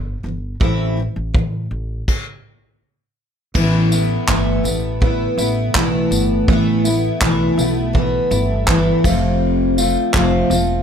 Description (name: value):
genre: acoustic pop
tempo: 82 BPM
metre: 4/4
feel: straight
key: A minor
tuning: A4 = 440 Hz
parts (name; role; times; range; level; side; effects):
- picked steel-string acoustic guitar; accompaniment; 0.0-10.8 s; E2 to F4; -17 LUFS; equal; double-tracked left and right
- upright bass; bass; 0.0-10.8 s; E1 to A2; -22 LUFS; equal; none
- soft brush drum kit; drums; 0.6-10.7 s; crash cymbal, handclaps, kick drum, tambourine; -20 LUFS; equal; none
room: light reverb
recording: none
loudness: -15 LUFS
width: side -7 dB against mid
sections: 0.0-3.5 A section; 3.5-10.8 B section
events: stop 2.1-3.5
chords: 0.0 Em; 0.6 Am; 3.5 Asus2; 9.0 F